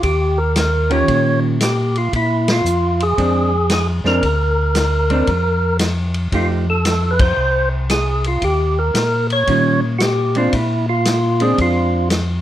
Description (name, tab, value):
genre	soul jazz organ trio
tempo	114 BPM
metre	4/4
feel	swing 66% on 8ths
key	Bb mixolydian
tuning	A4 = 438 Hz
part	percussive tonewheel organ	melody	0.0-12.1 s	E4 to Db5	-18 LUFS	equal	slow rotary speaker, overdrive
part	mellow tonewheel organ	bass	0.0-12.4 s	C2 to Bb2	-19 LUFS	left 1 dB	slow rotary speaker
part	vintage drum kit	drums	0.0-12.3 s	hi-hat, kick drum, ride cymbal, snare drum	-23 LUFS	left 1 dB	none
part	vintage hollow-body jazz guitar	accompaniment	0.9-12.1 s	Eb3 to G4	-19 LUFS	right 2 dB	none
room	light reverb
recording	none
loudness	-14 LUFS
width	side -12 dB against mid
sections	0.0-12.4 A section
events	band accent 2.4, 7.1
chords	0.0 Eb9; 2.1 Bb9; 6.3 F9; 8.4 Eb9; 10.5 Bb9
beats	| 0.03 0.56 1.08 1.60 | 2.13 2.65 3.18 3.70 | 4.23 4.75 5.28 5.80 | 6.33 6.85 7.38 7.90 | 8.43 8.95 9.48 10.00 | 10.53 11.06 11.58 12.11